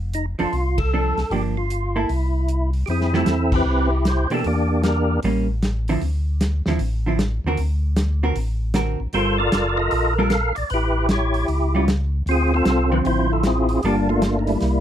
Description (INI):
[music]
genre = soul jazz organ trio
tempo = 153 BPM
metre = 4/4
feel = swing 65% on 8ths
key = F major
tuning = A4 = 440 Hz
[part]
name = mellow tonewheel organ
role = bass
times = 0.0-14.8 s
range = F1 to B2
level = -22 LUFS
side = equal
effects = slow rotary speaker
[part]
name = percussive tonewheel organ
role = melody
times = 0.1-5.2, 9.1-14.8 s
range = G3 to F5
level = -21 LUFS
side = equal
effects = slow rotary speaker, overdrive, chorus vibrato
[part]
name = warm soul drum kit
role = drums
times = 0.1-14.7 s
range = crash cymbal, hi-hat, kick drum, ride cymbal, snare drum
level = -25 LUFS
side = equal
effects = none
[part]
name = vintage hollow-body jazz guitar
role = accompaniment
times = 0.4-14.1 s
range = D3 to Bb4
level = -23 LUFS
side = right 2 dB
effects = none
[sound]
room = little or no reverb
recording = close, detailed microphones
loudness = -18 LUFS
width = side -10 dB against mid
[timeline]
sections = 0.0-2.9 A section; 2.9-14.8 B section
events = band accent 0.7, 3.5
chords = 0.0 F6; 1.3 Gm7; 2.1 C; 2.9 Fmaj9; 4.4 Em7b5; 5.2 A7b9; 6.0 Dm9; 7.6 D7b13; 9.1 Gm11; 10.7 A7; 12.3 Dm9; 13.8 Gm9